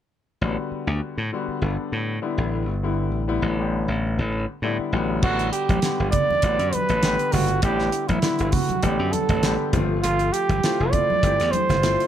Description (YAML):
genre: electric jazz fusion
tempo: 100 BPM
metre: 4/4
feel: swing 54% on 16ths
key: A dorian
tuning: A4 = 440 Hz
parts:
  - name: clear baby grand piano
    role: accompaniment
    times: 0.4-12.1 s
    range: D3 to G5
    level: -28 LUFS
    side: left 5 dB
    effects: none
  - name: glassy slap bass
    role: bass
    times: 0.4-12.0 s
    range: F1 to A2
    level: -24 LUFS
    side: equal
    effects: none
  - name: dark trumpet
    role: melody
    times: 5.2-12.1 s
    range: E4 to D5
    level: -22 LUFS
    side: right 3 dB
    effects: none
  - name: damped 70s drum kit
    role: drums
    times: 5.2-12.1 s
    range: crash cymbal, hi-hat, kick drum, snare drum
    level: -25 LUFS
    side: equal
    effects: none
  - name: congas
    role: percussion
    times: 5.7-11.8 s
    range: none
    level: -29 LUFS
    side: right 2 dB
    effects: none
room: light reverb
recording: none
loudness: -20 LUFS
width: side -10 dB against mid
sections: 0.4-5.2 A section; 5.2-12.1 B section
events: grand piano fill 4.3-5.2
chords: 0.4 A13sus4; 9.7 G13sus4